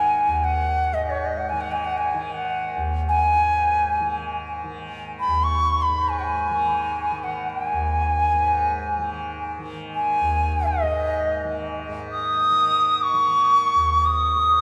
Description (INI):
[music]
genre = indian classical, Hindustani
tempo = free time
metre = none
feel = none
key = unclear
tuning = A4 = 441 Hz
[part]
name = bright reedy bansuri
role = melody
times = 0.0-14.6 s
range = Db5+22c to Eb6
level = -23 LUFS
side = equal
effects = none
[part]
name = tanpura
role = drone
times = 0.0-14.6 s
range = Eb2 to Eb3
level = -31 LUFS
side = equal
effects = none
[sound]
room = wet cathedral reverb, RT60 5.2 s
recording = in a vast, echoing space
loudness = -22 LUFS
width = mono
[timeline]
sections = 0.0-11.9 A section; 11.9-14.6 A section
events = none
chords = none